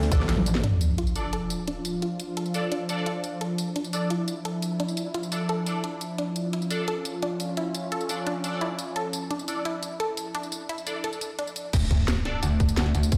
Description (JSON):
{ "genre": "dark technical drum and bass", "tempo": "173 BPM", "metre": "4/4", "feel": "straight", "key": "D harmonic minor", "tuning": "A4 = 441 Hz", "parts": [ { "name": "sweeping resonant pad", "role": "sustained chords", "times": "0.0-11.7 s", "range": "F3 to A4", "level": "-33 LUFS", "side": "equal", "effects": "chorus, sidechain pumping" }, { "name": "metallic wobble bass", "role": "bass", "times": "0.0-0.6, 11.7-13.2 s", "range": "A1 to D2", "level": "-27 LUFS", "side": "equal", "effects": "distortion, chorus, overdrive, sidechain pumping" }, { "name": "drum and bass drum kit", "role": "drums", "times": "0.0-13.2 s", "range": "crash cymbal, hi-hat, ride cymbal, snare drum, tambourine, toms", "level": "-36 LUFS", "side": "equal", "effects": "overdrive" }, { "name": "band-passed chord stab", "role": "stabs", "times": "0.1-12.4 s", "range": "D4 to D5", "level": "-38 LUFS", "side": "equal", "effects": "phaser, ensemble chorus, dub echo" }, { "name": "electronic kick drum", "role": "drums", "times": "0.1-0.2, 11.7-13.2 s", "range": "none", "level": "-24 LUFS", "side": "equal", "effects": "overdrive" }, { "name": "zap, sub drop and impact", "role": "sound effects", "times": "0.1-2.0, 11.7-13.1 s", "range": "none", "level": "-31 LUFS", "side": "equal", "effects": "none" }, { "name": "unison pluck", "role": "arpeggios", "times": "0.6-11.5 s", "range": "D4 to A4", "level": "-36 LUFS", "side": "equal", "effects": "sidechain pumping, dub echo" } ], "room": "moderate plate reverb, RT60 1.1 s, digital ambience", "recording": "played on a big sound system in a bare room, large studio reverb", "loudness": "-28 LUFS", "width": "mono", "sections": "0.6-11.7 A section; 11.7-13.2 B section", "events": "drum fill 0.3-0.6; impact 0.6-2.0, 11.7-13.1; filter sweep on synth arpeggio sound 0.6-11.7; drop 11.7-13.2", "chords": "0.0 Dm; 0.6 Dmadd9; 11.7 N.C.", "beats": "0.29 | 0.64 0.98 1.33 1.68 | 2.02 2.37 2.72 3.06 | 3.41 3.76 4.10 4.45 | 4.80 5.14 5.49 5.84 | 6.18 6.53 6.88 7.23 | 7.57 7.92 8.27 8.61 | 8.96 9.31 9.65 10.00 | 10.35 10.69 11.04 11.39 | 11.73 12.08 12.43 12.78 | 13.12" }